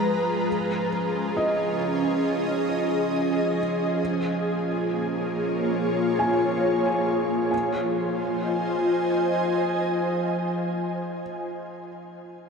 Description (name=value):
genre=ambient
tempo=free time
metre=none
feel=none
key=F minor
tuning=A4 = 439 Hz
part: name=ethereal airy pad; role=sustained chords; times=0.0-11.6 s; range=Ab3 to Bb5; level=-24 LUFS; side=equal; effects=ensemble chorus, built-in reverb, tremolo, shimmer reverb
part: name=felt-muted upright piano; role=arpeggios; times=0.0-12.5 s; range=Cb5 to Ab5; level=-31 LUFS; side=equal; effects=tape echo, shimmer reverb
part: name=bowed-like drone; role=drone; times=0.0-11.2 s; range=F3 to F4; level=-30 LUFS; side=right 1 dB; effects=built-in reverb
room=wet cathedral reverb, RT60 6.3 s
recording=in a vast, echoing space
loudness=-22 LUFS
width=side -5 dB against mid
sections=0.0-7.5 A section; 7.5-11.1 B section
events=none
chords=0.5 Dbsus2; 4.0 Bbm7; 7.5 Fm7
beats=free time